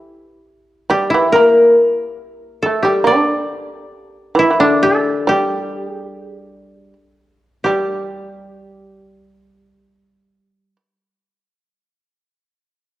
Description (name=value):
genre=japanese traditional, Japanese chamber music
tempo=42-70 BPM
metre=2/4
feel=rubato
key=G kumoi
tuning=A4 = 440 Hz
part: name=koto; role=melody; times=0.0-10.7 s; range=D4 to D5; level=-14 LUFS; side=left 1 dB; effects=none
part: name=shamisen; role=second line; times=0.9-10.8 s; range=D3 to D4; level=-18 LUFS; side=right 3 dB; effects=none
room=moderate recital hall reverb, RT60 1.7 s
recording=worn, warbling old tape, cassette tape, warbly pitch drift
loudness=-13 LUFS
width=side -15 dB against mid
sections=0.0-7.6 A section; 7.6-13.0 B section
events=slowing down 3.5-7.6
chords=none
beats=0.88 | 1.77 2.63 | 3.49 4.36 | 5.28 6.35 | 7.65 9.05 | 10.39